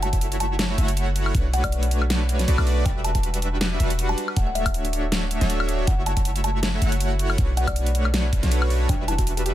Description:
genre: future bass.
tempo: 159 BPM.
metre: 4/4.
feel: swing 55% on 16ths, half-time.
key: E dorian.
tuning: A4 = 440 Hz.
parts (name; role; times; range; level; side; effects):
kalimba; melody; 0.0-9.2 s; D5 to A5; -32 LUFS; left 1 dB; sidechain pumping, tape echo.
soft supersaw; riff; 0.0-9.5 s; G3 to F#5; -28 LUFS; right 1 dB; sidechain pumping, dub echo.
warm 808-style bass; bass; 0.0-9.5 s; D1 to B1; -23 LUFS; equal; sidechain pumping.
dubstep drum kit; drums; 0.0-9.5 s; hi-hat, snare drum, woodblock; -28 LUFS; left 1 dB; none.
electronic kick drum; drums; 0.1-9.3 s; none; -23 LUFS; equal; none.
soft round pluck; arpeggios; 8.9-9.5 s; D4 to G4; -31 LUFS; equal; chorus, sidechain pumping, dub echo.
room: little or no reverb.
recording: dense, heavily limited modern master.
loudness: -20 LUFS.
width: side -13 dB against mid.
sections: 0.0-9.5 A section.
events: none.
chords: 0.0 F#m7; 1.3 Bm9; 2.9 Em9; 4.2 Dmaj9; 5.9 F#m7; 7.4 Bm9; 8.9 Em9.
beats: 0.21 0.59 0.97 | 1.35 1.72 2.10 2.48 | 2.86 3.23 3.61 3.99 | 4.37 4.74 5.12 5.50 | 5.87 6.25 6.63 7.01 | 7.38 7.76 8.14 8.52 | 8.89 9.27.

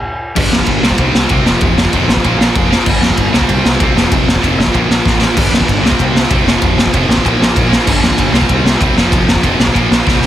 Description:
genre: punk rock.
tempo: 192 BPM.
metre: 4/4.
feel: straight.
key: unclear.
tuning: A4 = 441 Hz.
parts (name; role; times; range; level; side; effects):
distorted electric guitar; riff; 0.4-10.3 s; F2 to C4; -14 LUFS; equal; distortion.
growling picked electric bass; bass; 0.4-10.3 s; F1 to F2; -18 LUFS; equal; overdrive.
raw garage drum kit; drums; 0.4-10.1 s; crash cymbal, kick drum, ride cymbal, snare drum; -12 LUFS; equal; none.
room: little or no reverb.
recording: dense, heavily limited modern master.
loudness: -9 LUFS.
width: side -12 dB against mid.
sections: 0.4-10.3 A section.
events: stop 0.0-0.4; drum fill 5.1-5.4, 10.1.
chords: 0.4 G5; 0.8 C5; 1.5 F; 2.2 Bb5; 2.9 G5; 3.3 C5; 4.0 F5; 4.7 Bb5; 5.4 G5; 5.8 C5; 6.5 F; 7.2 Bb5; 7.9 G5; 8.3 C5; 9.0 F5; 9.7 Bb5.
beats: 0.04 | 0.36 0.67 0.98 1.30 | 1.61 1.92 2.24 2.55 | 2.86 3.17 3.49 3.80 | 4.11 4.43 4.74 5.05 | 5.37 5.68 5.99 6.30 | 6.62 6.93 7.24 7.55 | 7.87 8.18 8.49 8.80 | 9.12 9.43 9.74 10.05.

